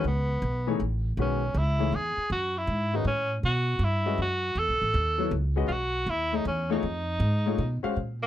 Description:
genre	modal jazz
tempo	159 BPM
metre	3/4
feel	swing 66% on 8ths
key	F# dorian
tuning	A4 = 440 Hz
part	clear tenor saxophone	melody	0.0-8.3 s	Bb3 to A4	-28 LUFS	right 1 dB	none
part	clear grand piano	accompaniment	0.0-8.0 s	D#3 to F5	-30 LUFS	left 7 dB	none
part	upright bass	bass	0.0-8.3 s	A1 to B2	-28 LUFS	right 1 dB	none
part	breathy bass clarinet	second line	8.2-8.3 s	Bb2	-40 LUFS	right 10 dB	none
room	little or no reverb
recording	close, detailed microphones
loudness	-25 LUFS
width	side -12 dB against mid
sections	0.0-8.0 A section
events	none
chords	0.0 F#9sus4; 3.4 B9sus4; 6.8 Fm7b13

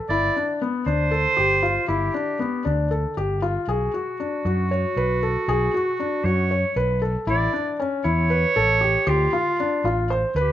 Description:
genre	contemporary instrumental, chamber music in an uneven meter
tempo	234 BPM (eighths)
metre	7/8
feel	straight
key	unclear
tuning	A4 = 440 Hz
part	felt-muted upright piano	arpeggios	0.0-10.5 s	B3 to C#5	-24 LUFS	left 3 dB	none
part	bright clarinet	melody	0.1-10.5 s	F4 to D5	-24 LUFS	right 4 dB	none
part	fretless electric bass	bass	0.1-10.5 s	G1 to F#2	-24 LUFS	equal	none
room	moderate recital hall reverb, RT60 1.4 s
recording	close, detailed microphones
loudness	-20 LUFS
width	side -12 dB against mid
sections	0.0-10.5 A section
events	none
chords	0.1 G; 3.7 Bmadd9; 7.3 A; 9.1 Dm

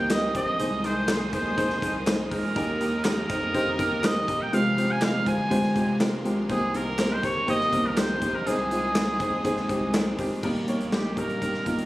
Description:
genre	piano-driven pop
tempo	122 BPM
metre	4/4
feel	straight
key	Ab major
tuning	A4 = 440 Hz
part	clear trumpet	melody	0.0-11.9 s	G4 to Ab5	-28 LUFS	right 1 dB	none
part	warm upright piano	accompaniment	0.0-11.9 s	C3 to Eb5	-27 LUFS	left 1 dB	none
part	clear studio string section	sustained chords	0.0-10.4 s	Ab4 to Eb6	-40 LUFS	left 1 dB	none
part	crunchy overdriven guitar	riff	0.0-11.9 s	F2 to Ab4	-34 LUFS	right 3 dB	spring reverb
part	saturated sub bass	bass	0.0-11.9 s	Eb1 to F2	-35 LUFS	equal	none
part	huge arena drum kit	drums	0.1-11.9 s	crash cymbal, hi-hat, kick drum, snare drum	-30 LUFS	equal	none
part	group handclap	percussion	0.1-10.1 s	none	-37 LUFS	equal	none
room	light reverb, small room ambience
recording	recorded on a phone in the room, studio reverb, compression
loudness	-23 LUFS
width	side -17 dB against mid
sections	0.0-10.4 A section; 10.4-11.9 B section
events	none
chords	0.0 Cm7; 0.6 Ab/C; 2.6 Eb; 4.5 Fmadd9; 6.5 Cm7; 8.5 Ab/C; 10.4 Eb

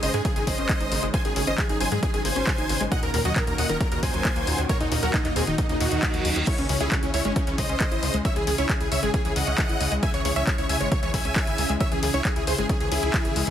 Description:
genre	uplifting trance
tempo	135 BPM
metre	4/4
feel	straight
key	C# harmonic minor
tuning	A4 = 440 Hz
part	big supersaw lead	melody	0.0-13.5 s	B#3 to G#5	-28 LUFS	equal	sidechain pumping, ping-pong delay
part	supersaw stab	second line	0.0-13.5 s	C#4 to G#5	-34 LUFS	right 2 dB	sidechain pumping, ping-pong delay
part	lush unison pad	sustained chords	0.0-13.5 s	C#3 to G#4	-34 LUFS	equal	chorus, sidechain pumping
part	wide unison pluck	arpeggios	0.0-13.5 s	A#2 to G#4	-31 LUFS	left 2 dB	sidechain pumping, ping-pong delay
part	tight sequencer bass	bass	0.0-13.5 s	D#1 to G#2	-29 LUFS	equal	sidechain pumping
part	punchy analog drum machine	drums	0.0-13.5 s	crash cymbal, handclaps, hi-hat	-30 LUFS	left 2 dB	overdrive
part	electronic kick drum	drums	0.2-13.2 s	none	-26 LUFS	equal	overdrive
part	reverse cymbal	sound effects	5.9-6.5 s	none	-34 LUFS	right 4 dB	none
room	light reverb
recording	heavily compressed radio sound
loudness	-21 LUFS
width	side -10 dB against mid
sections	0.0-13.5 A section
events	reverse cymbal 5.9-6.5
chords	0.0 G#sus4; 2.9 D#m7; 6.5 C#m

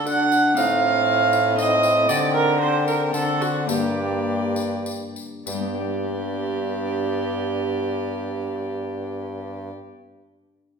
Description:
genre	classical, renaissance-style consort dance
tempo	96-119 BPM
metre	3/4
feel	straight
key	unclear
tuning	A4 = 440 Hz
part	warm violin	melody	0.0-9.7 s	D5 to G5	-36 LUFS	left 8 dB	none
part	rich viola	second line	0.0-9.7 s	F#4 to F#5	-22 LUFS	right 4 dB	none
part	Celtic harp	accompaniment	0.0-10.0 s	G2 to D5	-30 LUFS	left 6 dB	none
part	warm bassoon	bass	0.0-9.7 s	G2 to D3	-26 LUFS	equal	none
part	clear trombone	accompaniment	0.1-9.7 s	Bb3 to D4	-30 LUFS	left 1 dB	none
part	tambourine	percussion	0.1-5.8 s	none	-35 LUFS	left 5 dB	none
room	wet recital hall reverb, RT60 1.4 s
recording	recorded in a church or concert hall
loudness	-20 LUFS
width	side -6 dB against mid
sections	0.0-5.5 A section; 5.5-9.2 B section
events	slowing down 1.3-5.5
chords	0.0 D; 0.6 Adim; 2.1 D7sus4; 3.1 D7; 3.7 Gm; 5.5 G

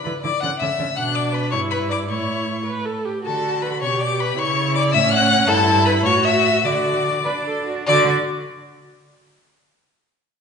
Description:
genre	quick classical-period movement for string quartet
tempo	98-109 BPM (dotted quarters)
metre	6/8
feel	straight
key	D major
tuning	A4 = 440 Hz
part	rich violin	melody	0.0-8.1 s	A5 to F#6	-22 LUFS	left 6 dB	none
part	rich violin	second line	0.0-8.1 s	A4 to F#5	-22 LUFS	left 3 dB	none
part	rich viola	accompaniment	0.1-8.1 s	C#4 to B4	-24 LUFS	right 3 dB	none
part	warm cello	bass	0.1-8.1 s	G2 to D4	-24 LUFS	right 4 dB	none
room	wet recital hall reverb, RT60 1.5 s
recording	recorded in a church or concert hall, nothing above 10.5 kHz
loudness	-17 LUFS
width	side -6 dB against mid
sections	0.0-7.9 A section; 7.9-9.1 B section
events	slowing down 4.9-7.9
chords	0.4 Dmaj9; 1.0 Bm; 1.5 Em/G; 2.1 A; 3.3 D; 3.8 G/B; 4.4 C#m; 4.9 F#m/A; 5.5 Em/G; 6.1 A5; 6.7 D

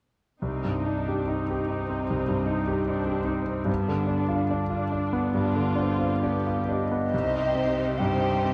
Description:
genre	classical, romantic movement for piano and orchestra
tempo	62-76 BPM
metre	4/4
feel	rubato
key	C minor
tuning	A4 = 439 Hz
part	bright grand piano	melody	0.4-8.5 s	C2 to G4	-28 LUFS	equal	none
part	warm studio viola section	accompaniment	0.4-8.5 s	B3 to G4	-35 LUFS	equal	none
part	mellow hollow silver concert flute	second line	6.7-8.5 s	Eb5 to G5	-30 LUFS	equal	none
part	rich studio violin section	melody	7.1-8.5 s	C5	-36 LUFS	equal	none
part	rich studio violin section	second line	7.1-8.5 s	G4	-39 LUFS	equal	none
part	rich studio cello section	bass	7.1-8.5 s	C3	-36 LUFS	equal	none
room	moderate scoring stage reverb, RT60 1.9 s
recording	dark, warm production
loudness	-27 LUFS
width	mono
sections	0.4-7.1 A section; 7.1-8.5 B section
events	none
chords	0.4 Cm; 3.7 G7; 7.1 Cm

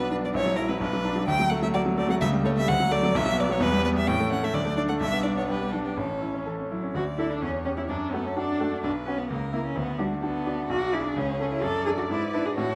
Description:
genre	quick classical-period movement for piano quartet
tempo	128 BPM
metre	2/4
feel	straight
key	D major from 3.2 s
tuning	A4 = 440 Hz
part	rich violin	melody	0.0-12.8 s	F#4 to G5	-33 LUFS	equal	none
part	rich cello	second line	0.0-12.8 s	E3 to A4	-34 LUFS	equal	none
part	bright concert grand piano	accompaniment	0.0-12.8 s	A1 to B4	-29 LUFS	equal	none
part	rich viola	accompaniment	0.0-12.8 s	A3 to E5	-36 LUFS	equal	none
room	moderate recital hall reverb, RT60 1.3 s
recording	close, detailed microphones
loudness	-26 LUFS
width	mono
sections	0.0-6.9 A section; 6.9-12.8 B section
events	none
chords	0.3 F#7/A#; 0.8 Bm; 1.3 D; 2.2 A7/C#; 2.7 D; 3.2 B5; 3.6 Em; 4.1 A7; 4.6 D; 5.0 G/B; 6.0 A; 6.9 D; 7.4 C#dim/E; 7.9 D/F#; 8.8 B5; 9.3 A#dim/C#; 9.8 Bm/D; 10.7 Bm6; 11.2 A/C#; 11.6 D/F#; 12.1 E7/G#

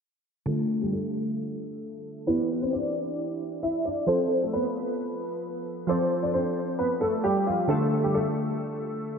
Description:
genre	hip hop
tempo	133 BPM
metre	4/4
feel	half-time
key	unclear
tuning	A4 = 440 Hz
part	warm grand piano	melody	0.5-9.2 s	F3 to E5	-26 LUFS	equal	analog chorus, low-pass filter, diffuse ambient delay
part	glassy digital keys	accompaniment	0.5-9.2 s	D3 to D5	-30 LUFS	right 1 dB	chorus, phaser, low-pass filter
room	wet lush hall reverb, RT60 2.5 s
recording	dreamy mix soaked in reverb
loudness	-25 LUFS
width	side -6 dB against mid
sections	0.5-9.2 A section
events	filter sweep 0.5-9.2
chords	0.5 Dm; 2.3 Em7; 4.1 F; 7.7 Dm

